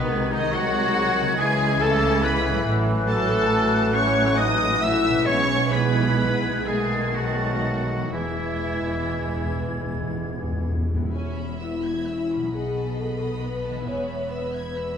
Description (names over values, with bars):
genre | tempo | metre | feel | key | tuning
classical, slow romantic movement for symphony orchestra | 39-47 BPM (dotted quarters) | 6/8 | rubato | E major | A4 = 441 Hz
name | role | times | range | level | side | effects
rich symphonic violin section | melody | 0.0-15.0 s | B4 to E6 | -30 LUFS | left 3 dB | none
bright clarinet | second line | 0.0-9.6 s | B3 to E5 | -30 LUFS | left 1 dB | none
clear oboe | second line | 0.0-9.6 s | B3 to E5 | -30 LUFS | right 2 dB | none
warm symphonic violin section | second line | 0.0-15.0 s | B3 to G#6 | -34 LUFS | left 2 dB | none
warm bassoon | accompaniment | 0.0-10.8 s | D#3 to E3 | -32 LUFS | left 1 dB | none
warm symphonic viola section | accompaniment | 0.0-15.0 s | D#3 to C#4 | -31 LUFS | right 1 dB | none
mellow French horn section | sustained chords | 0.0-15.0 s | B2 to C#5 | -28 LUFS | left 3 dB | none
warm trombone section | sustained chords | 0.0-10.8 s | D#3 to A3 | -33 LUFS | right 4 dB | none
concert harp | arpeggios | 0.0-15.0 s | A2 to C#5 | -34 LUFS | left 6 dB | none
warm chamber double bass section | bass | 0.0-15.0 s | E1 to C#2 | -30 LUFS | right 4 dB | none
warm studio cello section | bass | 0.0-15.0 s | E2 to C#3 | -31 LUFS | right 2 dB | none
flute section | second line | 0.1-10.8 s | F#6 to A6 | -29 LUFS | left 1 dB | none
timpani | percussion | 8.1-11.1 s | E2 | -29 LUFS | left 1 dB | none
room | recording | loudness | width
moderate scoring stage reverb, RT60 1.7 s | minimal, uncompressed stereo recording | -21 LUFS | side -7 dB against mid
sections
0.0-11.1 A section; 11.1-15.0 B section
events
timpani fill 8.1-11.1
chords
0.1 G#7/B#; 1.4 C#m; 2.7 F#m7/A; 5.3 E/B; 6.7 B7; 8.1 E; 12.5 B7; 13.9 E